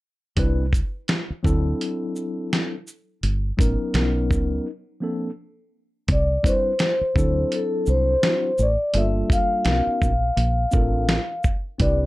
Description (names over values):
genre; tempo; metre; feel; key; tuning
hip hop, jazz-hop; 84 BPM; 4/4; swing 60% on 16ths; C mixolydian; A4 = 440 Hz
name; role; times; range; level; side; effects
mellow tine electric piano; accompaniment; 0.4-12.1 s; F3 to B4; -26 LUFS; left 1 dB; medium stereo tremolo
deep dub fingered electric bass; bass; 0.4-12.1 s; G1 to D2; -22 LUFS; equal; none
dusty soul sampler-style drum kit; drums; 0.4-12.0 s; hi-hat, kick drum, shaker, snare drum; -23 LUFS; equal; none
vibraphone with soft mallets; melody; 6.1-12.0 s; A4 to F5; -23 LUFS; left 1 dB; plate reverb
room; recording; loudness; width
moderate small room reverb, RT60 0.5 s; dark, warm production; -20 LUFS; side -18 dB against mid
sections
0.4-6.1 A section; 6.1-12.1 B section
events
break 4.7-6.1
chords
0.4 Cmaj7; 1.4 D7; 3.2 Gmadd9; 3.9 Bmaj9; 4.7 Bbmaj9; 6.1 Cmaj7; 7.2 D7; 8.9 Gm9; 9.7 Bmaj9; 10.4 Bbmaj9